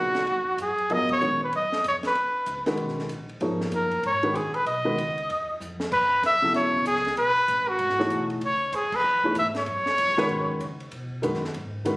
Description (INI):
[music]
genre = modal jazz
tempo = 192 BPM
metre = 4/4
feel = swing 62% on 8ths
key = F# dorian from 5.9 s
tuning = A4 = 442 Hz
[part]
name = warm trumpet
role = melody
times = 0.0-10.8 s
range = Gb4 to E5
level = -23 LUFS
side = equal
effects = none
[part]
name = warm baby grand piano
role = accompaniment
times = 0.0-12.0 s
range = Bb2 to Eb5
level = -27 LUFS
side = equal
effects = none
[part]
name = upright bass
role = bass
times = 0.0-12.0 s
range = Gb1 to C#3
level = -39 LUFS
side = equal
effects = none
[part]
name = compact cocktail drum kit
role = drums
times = 0.1-11.9 s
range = crash cymbal, hi-hat, kick drum, ride cymbal, snare drum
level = -37 LUFS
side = equal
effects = none
[sound]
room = moderate club reverb, RT60 0.8 s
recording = recorded on a phone in the room, club reverb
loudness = -22 LUFS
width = side -21 dB against mid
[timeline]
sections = 0.0-5.9 A section; 5.9-12.0 B section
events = band accent 1.1, 8.9; drum fill 5.6-5.9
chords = 0.0 Ebm11; 0.9 Abm11; 5.9 F#9sus4